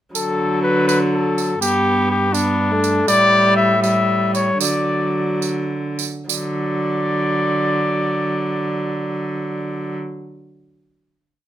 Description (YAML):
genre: classical, renaissance-style consort dance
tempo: 67-83 BPM (dotted quarters)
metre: 6/8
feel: straight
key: D major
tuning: A4 = 440 Hz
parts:
  - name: warm viola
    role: accompaniment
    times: 0.1-9.9 s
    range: F#3 to B3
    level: -22 LUFS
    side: equal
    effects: none
  - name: rich cello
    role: bass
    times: 0.1-9.9 s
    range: G2 to D3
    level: -23 LUFS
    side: right 2 dB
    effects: none
  - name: warm cornet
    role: melody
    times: 0.2-9.9 s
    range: D4 to E5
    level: -19 LUFS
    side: left 2 dB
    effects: none
  - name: tambourine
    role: percussion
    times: 0.2-6.6 s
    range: none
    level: -24 LUFS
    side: right 9 dB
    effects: none
room: light reverb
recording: minimal, uncompressed stereo recording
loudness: -16 LUFS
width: side -12 dB against mid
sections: 0.2-6.3 A section; 6.3-9.9 final chord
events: slowing down 2.3-6.3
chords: 0.2 D; 1.6 G; 3.1 A7sus4; 4.6 D